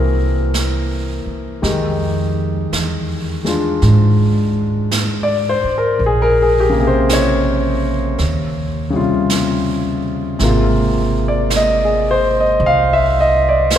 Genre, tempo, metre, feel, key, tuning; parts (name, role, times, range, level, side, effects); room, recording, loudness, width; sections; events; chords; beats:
jazz ballad; 55 BPM; 4/4; swing 67% on 8ths; A4 = 440 Hz
warm concert grand piano; accompaniment; 0.0-13.8 s; C3 to F5; -16 LUFS; left 1 dB
upright bass; bass; 0.0-13.8 s; Ab1 to Ab2; -18 LUFS; right 1 dB
jazz brush drum kit; drums; 0.5-13.8 s; brushed snare drum, hi-hat, snare drum; -25 LUFS; right 4 dB
wet cathedral reverb, RT60 4.3 s; recorded in a church or concert hall; -14 LUFS; side -10 dB against mid
0.0-13.8 A section
0.0 C7b13; 1.6 Fm9; 6.0 Bbm9; 8.2 Eb13; 10.4 Ab69
0.53 | 1.62 2.71 3.81 4.90 | 5.99 7.08 8.18 9.29 | 10.39 11.49 12.60 13.69